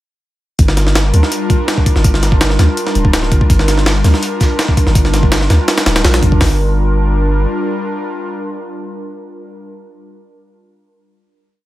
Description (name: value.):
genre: drum and bass, jungle.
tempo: 165 BPM.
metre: 4/4.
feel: straight.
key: G minor.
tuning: A4 = 443 Hz.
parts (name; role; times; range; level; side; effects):
airy breathy pad; sustained chords; 0.6-9.5 s; G3 to Bb4; -19 LUFS; equal; chorus.
long sustained 808-style bass; bass; 0.6-7.5 s; D1 to D2; -13 LUFS; equal; none.
breakbeat sampler-style drum kit; drums; 0.6-6.5 s; hi-hat, kick drum, snare drum; -13 LUFS; equal; studio reverb.
crunchy breakbeat drum kit; drums; 3.5-6.3 s; hi-hat, snare drum; -26 LUFS; right 2 dB; high-pass filter on hats, studio reverb, high-pass filter on snare, high-pass filter on room.
room: studio reverb.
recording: none.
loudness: -11 LUFS.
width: side -15 dB against mid.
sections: 0.6-6.4 drop; 6.4-9.3 final chord.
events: drop 0.6-6.4.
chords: 0.6 Gm7.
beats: | 0.59 0.95 1.32 1.68 | 2.04 2.41 2.77 3.13 | 3.50 3.86 4.23 4.59 | 4.95 5.32 5.68 6.04 | 6.41 6.77 7.13 7.50 | 7.86 8.23 8.59 8.95.